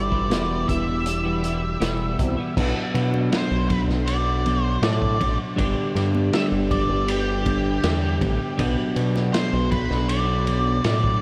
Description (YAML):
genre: psychedelic rock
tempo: 80 BPM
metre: 4/4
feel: straight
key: unclear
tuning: A4 = 440 Hz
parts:
  - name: octave-fuzz lead guitar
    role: melody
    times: 0.0-11.2 s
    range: G4 to E5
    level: -30 LUFS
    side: equal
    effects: distortion, diffuse ambient delay
  - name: string machine, full ensemble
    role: sustained chords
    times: 0.0-11.2 s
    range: F#3 to G4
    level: -33 LUFS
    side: equal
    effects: ensemble chorus
  - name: twelve-string electric guitar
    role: riff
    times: 0.0-11.2 s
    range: E2 to B4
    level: -28 LUFS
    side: equal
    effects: rotary speaker
  - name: gritty driven synth bass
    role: bass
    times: 0.0-11.2 s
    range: E1 to B2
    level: -26 LUFS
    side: equal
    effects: none
  - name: vintage drum kit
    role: drums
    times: 0.1-11.2 s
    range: crash cymbal, hi-hat, kick drum, ride cymbal, snare drum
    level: -30 LUFS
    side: equal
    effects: none
  - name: congas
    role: percussion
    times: 3.0-10.7 s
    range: none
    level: -35 LUFS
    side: equal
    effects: none
room: moderate huge ambient reverb, RT60 6.8 s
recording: dreamy mix soaked in reverb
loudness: -22 LUFS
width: mono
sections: 0.0-2.6 A section; 2.6-11.2 B section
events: none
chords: 0.0 Em; 2.6 Bm; 5.6 G; 8.6 Bm